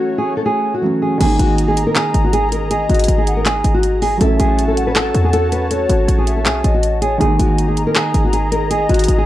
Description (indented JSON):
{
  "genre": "hip hop, trap",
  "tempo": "160 BPM",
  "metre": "4/4",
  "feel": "half-time",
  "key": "unclear",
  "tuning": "A4 = 438 Hz",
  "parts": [
    { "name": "nylon-string guitar", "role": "melody", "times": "0.0-9.3 s", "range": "F#4 to B4", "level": "-18 LUFS", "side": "equal", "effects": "none" },
    { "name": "felt-muted upright piano", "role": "accompaniment", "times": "0.0-9.3 s", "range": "D#3 to E4", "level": "-22 LUFS", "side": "right 2 dB", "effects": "none" },
    { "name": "warm analog pad", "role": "sustained chords", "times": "0.0-9.3 s", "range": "A3 to A#5", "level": "-27 LUFS", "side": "left 1 dB", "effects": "chorus" },
    { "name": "hollow clarinet-like synth lead", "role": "second line", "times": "1.2-9.2 s", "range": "C#5 to A#5", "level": "-24 LUFS", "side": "left 4 dB", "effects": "chorus, tape echo" },
    { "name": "short 808-style bass", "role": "bass", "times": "1.2-9.3 s", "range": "G#1 to E2", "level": "-17 LUFS", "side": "equal", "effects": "none" },
    { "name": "trap drum kit", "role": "drums", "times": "1.2-9.2 s", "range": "crash cymbal, handclaps, hi-hat", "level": "-21 LUFS", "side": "equal", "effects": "vintage 12-bit sampler grit" }
  ],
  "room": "little or no reverb",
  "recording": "dark, warm production",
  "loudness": "-13 LUFS",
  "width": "side -14 dB against mid",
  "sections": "0.0-1.2 A section; 1.2-9.3 B section",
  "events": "none",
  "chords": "0.0 A6; 1.2 G#sus2; 4.2 A6; 7.2 G#sus2"
}